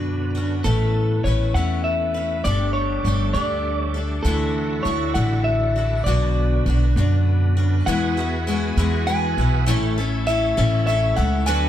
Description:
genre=folk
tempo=66 BPM (dotted quarters)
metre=6/8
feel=straight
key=A major from 7.9 s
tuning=A4 = 440 Hz
part: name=electric guitar at the edge of break-up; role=melody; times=0.0-11.7 s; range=A4 to G#5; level=-25 LUFS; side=left 1 dB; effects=harmonic tremolo
part: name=picked twelve-string acoustic guitar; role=accompaniment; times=0.0-11.7 s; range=A2 to B4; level=-25 LUFS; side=left 3 dB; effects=none
part: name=bright tonewheel organ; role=sustained chords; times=0.0-11.7 s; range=D3 to G#4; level=-30 LUFS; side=right 4 dB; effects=chorus vibrato, slow rotary speaker
part: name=upright bass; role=bass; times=0.0-11.7 s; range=G1 to F#2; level=-21 LUFS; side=equal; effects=none
room=light reverb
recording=none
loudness=-18 LUFS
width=side -11 dB against mid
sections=0.0-7.9 A section; 7.9-11.7 B section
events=none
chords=0.0 Bmadd9; 0.7 Aadd9; 2.5 Gsus2; 4.3 Dadd9; 6.1 Bmadd9; 7.9 Eadd9; 9.7 A

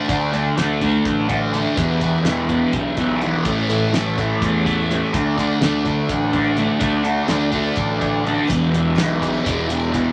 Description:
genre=psychedelic rock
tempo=250 BPM (eighths)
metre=7/8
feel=straight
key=E dorian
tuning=A4 = 439 Hz
part: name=fuzz guitar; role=riff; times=0.0-10.1 s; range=E2 to D4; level=-21 LUFS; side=equal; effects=distortion, phaser
part: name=fuzz picked electric bass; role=bass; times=0.1-10.0 s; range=E1 to E2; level=-26 LUFS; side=equal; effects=overdrive
part: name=damped 70s drum kit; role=drums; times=0.1-10.1 s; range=hi-hat, kick drum, snare drum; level=-28 LUFS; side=equal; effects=none
part: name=tonewheel organ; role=sustained chords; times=1.8-10.1 s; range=A3 to D5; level=-32 LUFS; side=equal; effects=chorus vibrato, slow rotary speaker
part: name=tambourine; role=percussion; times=8.5-9.9 s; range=none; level=-46 LUFS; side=equal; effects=none
room=light reverb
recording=none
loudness=-19 LUFS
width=mono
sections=0.0-8.5 A section; 8.5-10.1 B section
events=none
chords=0.0 D5; 1.8 Em7; 3.4 A; 5.1 D; 8.5 Em7

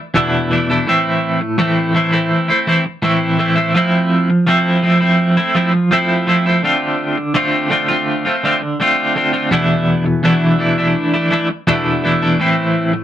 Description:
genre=rock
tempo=83 BPM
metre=4/4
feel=straight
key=unclear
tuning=A4 = 441 Hz
part: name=twelve-string electric guitar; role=solo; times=0.1-13.0 s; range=E2 to F4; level=-13 LUFS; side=equal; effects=tremolo
room=light reverb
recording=rough rehearsal-room recording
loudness=-13 LUFS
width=side -11 dB against mid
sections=0.0-13.0 A section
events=none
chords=0.0 E7sus4; 0.9 Am; 3.7 Fmaj7; 6.6 Dm7; 9.5 E7sus4; 12.4 Am

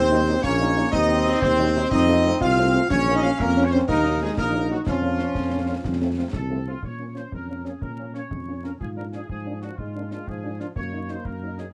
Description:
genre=military-style march for wind band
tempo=122 BPM (dotted quarters)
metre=6/8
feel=straight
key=Bb minor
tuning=A4 = 440 Hz
part: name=clear trumpet section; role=melody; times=0.0-11.7 s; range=F4 to F5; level=-31 LUFS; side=equal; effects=none
part: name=warm euphonium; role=second line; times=0.0-11.7 s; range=F3 to F4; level=-30 LUFS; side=equal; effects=none
part: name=warm trombone section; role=sustained chords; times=0.0-6.6 s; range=Bb3 to Eb4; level=-28 LUFS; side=equal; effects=none
part: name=mellow tuba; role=bass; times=0.0-11.7 s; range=Bb1 to Bb2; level=-28 LUFS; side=equal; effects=none
part: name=dark French horn section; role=accompaniment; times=0.1-11.6 s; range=F3 to Eb4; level=-33 LUFS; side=equal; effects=none
part: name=concert snare drum, concert bass drum and clash cymbals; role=drums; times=0.4-11.7 s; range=none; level=-35 LUFS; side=equal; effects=none
room=light reverb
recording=vinyl crackle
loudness=-23 LUFS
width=mono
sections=0.0-6.8 A section; 6.8-11.7 B section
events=none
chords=0.0 Ebm; 0.9 Cdim/Eb; 1.9 F7; 2.9 Bbm; 3.9 Ebm; 4.9 Bbm/F; 5.8 F; 6.8 Bbm; 8.8 Bb7/Ab; 10.8 Ebm/Gb

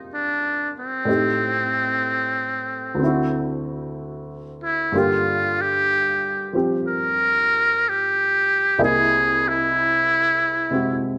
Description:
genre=jazz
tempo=62 BPM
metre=4/4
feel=swing 66% on 8ths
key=unclear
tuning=A4 = 440 Hz
part: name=warm baby grand piano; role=accompaniment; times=0.0-11.2 s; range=C2 to D#5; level=-27 LUFS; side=equal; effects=none
part: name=trumpet with metal mute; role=melody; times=0.1-11.0 s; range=C4 to Bb4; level=-22 LUFS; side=equal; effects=none
room=light reverb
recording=none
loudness=-21 LUFS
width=mono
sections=0.0-11.2 A section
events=none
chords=0.0 Cm9; 1.1 Am7b5; 3.0 D7; 4.9 Gm7; 8.8 C7alt

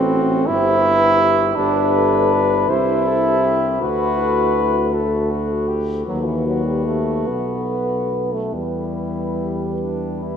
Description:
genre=classical, hymn-like piece for brass band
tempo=46-55 BPM (dotted quarters)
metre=6/8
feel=rubato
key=E minor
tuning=A4 = 440 Hz
part: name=mellow flugelhorn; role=melody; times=0.0-10.4 s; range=D4 to C5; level=-25 LUFS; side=left 8 dB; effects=none
part: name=mellow French horn section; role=second line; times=0.0-10.4 s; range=A4 to C5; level=-25 LUFS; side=right 2 dB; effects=none
part: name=clear trombone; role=accompaniment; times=0.0-10.4 s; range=E3 to F#4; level=-20 LUFS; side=right 1 dB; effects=none
part: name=warm euphonium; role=accompaniment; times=0.0-10.4 s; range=E4 to A4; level=-28 LUFS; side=left 2 dB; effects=none
part: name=warm tuba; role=bass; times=0.0-10.4 s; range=G1 to E2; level=-24 LUFS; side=left 1 dB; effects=none
room=wet cathedral reverb, RT60 6.2 s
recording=in a vast, echoing space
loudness=-16 LUFS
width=side -8 dB against mid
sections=0.0-10.4 A section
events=none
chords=0.5 G; 2.7 C; 3.8 D; 6.1 B/D#; 7.3 B5; 8.5 Em

